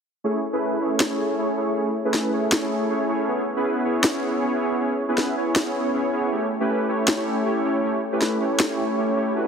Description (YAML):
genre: future bass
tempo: 158 BPM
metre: 4/4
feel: half-time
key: A major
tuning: A4 = 440 Hz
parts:
  - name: soft supersaw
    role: riff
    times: 0.2-9.5 s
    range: A3 to C#5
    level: -22 LUFS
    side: equal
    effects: low-pass filter, dub echo
  - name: electronic finger snaps and snare drum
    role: drums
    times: 1.0-8.7 s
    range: none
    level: -23 LUFS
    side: left 1 dB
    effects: small room ambience
room: moderate lush hall reverb, RT60 2.0 s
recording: heavily compressed radio sound, multiband compression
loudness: -21 LUFS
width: side -6 dB against mid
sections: 0.2-9.5 A section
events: none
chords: 0.2 Amaj7; 3.3 C#m7; 6.3 A7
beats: | 0.24 0.62 1.00 1.38 | 1.76 2.14 2.52 2.90 | 3.28 3.66 4.04 4.42 | 4.80 5.18 5.56 5.94 | 6.32 6.70 7.08 7.46 | 7.84 8.22 8.60 8.98 | 9.36